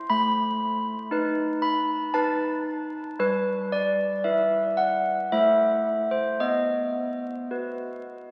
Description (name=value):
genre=classical, tune for handbells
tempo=57 BPM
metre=3/4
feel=straight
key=unclear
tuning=A4 = 440 Hz
part: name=handbells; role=solo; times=0.0-8.3 s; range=G3 to B5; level=-26 LUFS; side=equal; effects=none
room=wet cathedral reverb, RT60 4.4 s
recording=very old 78 rpm record, vinyl crackle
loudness=-25 LUFS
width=mono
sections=0.0-8.3 A section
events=none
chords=0.1 B7/A; 3.2 Em/G; 5.3 Am; 6.4 B